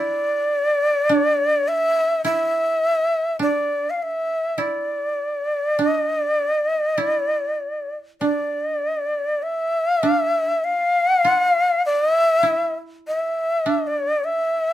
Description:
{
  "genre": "japanese traditional, Japanese chamber music",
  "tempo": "50 BPM",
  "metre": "4/4",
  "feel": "rubato",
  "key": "D hirajoshi",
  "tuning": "A4 = 441 Hz",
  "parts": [
    { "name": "breathy bright shakuhachi", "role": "melody", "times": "0.0-14.7 s", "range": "D5 to F5", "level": "-19 LUFS", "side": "left 1 dB", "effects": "none" },
    { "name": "koto", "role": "second line", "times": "0.0-14.7 s", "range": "D4 to F4", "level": "-26 LUFS", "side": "right 5 dB", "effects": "none" }
  ],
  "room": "light reverb",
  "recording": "none",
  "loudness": "-18 LUFS",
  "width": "side -13 dB against mid",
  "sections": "0.0-9.4 A section; 9.4-14.7 B section",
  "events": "none",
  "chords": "none"
}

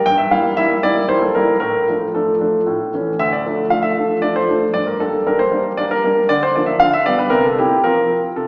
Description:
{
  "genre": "classical-period piano sonatina",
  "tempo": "116 BPM",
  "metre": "3/4",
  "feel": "straight",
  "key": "unclear",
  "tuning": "A4 = 441 Hz",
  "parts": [
    { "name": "clear concert grand piano", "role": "solo", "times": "0.0-8.5 s", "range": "D2 to G5", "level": "-17 LUFS", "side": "equal", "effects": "none" }
  ],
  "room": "wet recital hall reverb, RT60 1.8 s",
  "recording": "recorded in a church or concert hall, small speaker sound",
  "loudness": "-17 LUFS",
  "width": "mono",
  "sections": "0.0-8.5 A section",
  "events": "none",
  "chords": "0.1 Edim/G; 1.6 Dm/A; 2.7 A; 3.2 Dm; 4.7 Gm; 6.3 Bb/D; 6.8 G/D; 7.3 C7; 7.9 F"
}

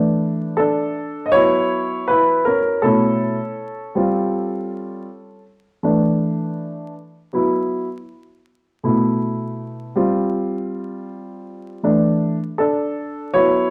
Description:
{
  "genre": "hip hop",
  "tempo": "80 BPM",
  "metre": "4/4",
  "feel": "swing 59% on 16ths",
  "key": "E dorian",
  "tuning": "A4 = 440 Hz",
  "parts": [
    { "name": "dark baby grand piano", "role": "solo", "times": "0.0-13.7 s", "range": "B2 to D#5", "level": "-20 LUFS", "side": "equal", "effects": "none" }
  ],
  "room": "wet large studio reverb, RT60 1.1 s",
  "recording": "vinyl crackle",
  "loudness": "-20 LUFS",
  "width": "mono",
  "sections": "0.0-13.7 A section",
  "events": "grand piano solo 0.0-13.7",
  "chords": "0.0 E7sus4; 1.3 F#7sus4; 2.8 B9sus4; 4.0 G9sus4; 5.8 E7sus4; 7.3 F#7sus4; 8.8 B7sus4; 10.0 G7sus4; 11.8 E7sus4"
}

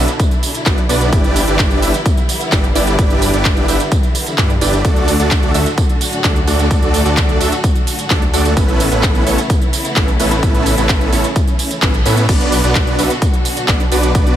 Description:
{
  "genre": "EDM, festival progressive house",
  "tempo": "129 BPM",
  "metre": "4/4",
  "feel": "straight",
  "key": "B minor",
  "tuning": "A4 = 440 Hz",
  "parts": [
    { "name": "rich studio string section", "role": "sustained chords", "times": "0.0-14.4 s", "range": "A2 to F#4", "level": "-23 LUFS", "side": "equal", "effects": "sidechain pumping" },
    { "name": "supersaw chords", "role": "riff", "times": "0.0-14.4 s", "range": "A3 to E5", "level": "-18 LUFS", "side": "right 1 dB", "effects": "cassette tape, sidechain pumping, dub echo" },
    { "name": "detuned saw bass", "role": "bass", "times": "0.0-14.4 s", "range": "G1 to A2", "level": "-18 LUFS", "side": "equal", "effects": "sidechain pumping" },
    { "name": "big-room dance drum kit", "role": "drums", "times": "0.1-14.4 s", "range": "crash cymbal, handclaps, hi-hat, ride cymbal, tambourine", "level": "-20 LUFS", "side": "right 1 dB", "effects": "none" },
    { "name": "electronic kick drum", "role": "drums", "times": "0.2-14.2 s", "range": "none", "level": "-15 LUFS", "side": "equal", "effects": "none" }
  ],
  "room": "little or no reverb",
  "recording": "none",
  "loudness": "-12 LUFS",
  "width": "side -11 dB against mid",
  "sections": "0.0-12.3 A section; 12.3-14.4 A section",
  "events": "drop 0.0-12.3, 12.3-14.4; band accent 11.8",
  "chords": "0.0 Bm; 1.1 G6; 4.8 D; 8.6 Aadd9; 12.3 Bm"
}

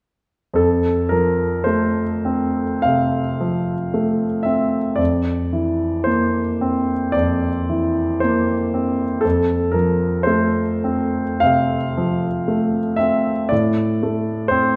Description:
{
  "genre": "classical, romantic nocturne for solo piano",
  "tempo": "56 BPM",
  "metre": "4/4",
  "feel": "uneven beats, rubato",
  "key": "F major",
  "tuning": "A4 = 440 Hz",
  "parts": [
    { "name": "clear grand piano", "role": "solo", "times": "0.5-14.8 s", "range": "F2 to F5", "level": "-19 LUFS", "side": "equal", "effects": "none" }
  ],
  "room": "wet recital hall reverb, RT60 1.3 s",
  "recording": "none",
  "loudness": "-20 LUFS",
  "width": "mono",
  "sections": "0.6-14.8 A section",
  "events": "none",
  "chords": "0.6 F; 5.0 C7/F; 9.2 F; 13.5 F/A (rootless)"
}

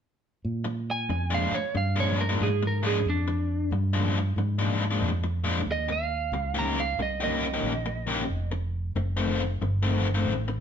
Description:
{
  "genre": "blues",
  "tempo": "92 BPM",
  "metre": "4/4",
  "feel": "swing 65% on 8ths",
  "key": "Bb mixolydian",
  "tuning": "A4 = 436 Hz",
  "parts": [
    { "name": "fingered electric bass", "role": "bass", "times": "0.4-10.6 s", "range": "F1 to Bb2", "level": "-28 LUFS", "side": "equal", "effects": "none" },
    { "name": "biting overdriven guitar", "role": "riff", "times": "0.6-10.5 s", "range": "F2 to G4", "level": "-29 LUFS", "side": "left 3 dB", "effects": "harmonic tremolo" },
    { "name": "lightly driven lead guitar", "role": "melody", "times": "0.9-8.5 s", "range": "D4 to Bb5", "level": "-29 LUFS", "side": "right 4 dB", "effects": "none" }
  ],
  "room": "wet studio reverb, RT60 0.9 s",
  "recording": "band playing live in one room",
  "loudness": "-25 LUFS",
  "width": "side -8 dB against mid",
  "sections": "0.4-10.6 A section",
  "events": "none",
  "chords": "0.4 Bb7; 5.7 Eb7; 8.3 F7"
}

